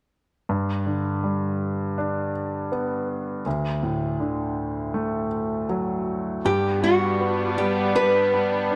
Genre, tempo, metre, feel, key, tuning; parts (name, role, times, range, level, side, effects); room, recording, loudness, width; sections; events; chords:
pop; 80 BPM; 4/4; straight; G major; A4 = 441 Hz
clear grand piano; accompaniment; 0.5-8.8 s; D2 to D4; -27 LUFS; equal
nylon-string guitar; melody; 6.5-8.8 s; F#4 to B4; -24 LUFS; equal
warm studio string section; sustained chords; 6.5-8.8 s; G3 to D4; -28 LUFS; equal
moderate plate reverb, RT60 2.8 s; -25 LUFS; mono
0.5-6.5 A section; 6.5-8.8 B section
0.5 G; 3.5 D; 6.5 G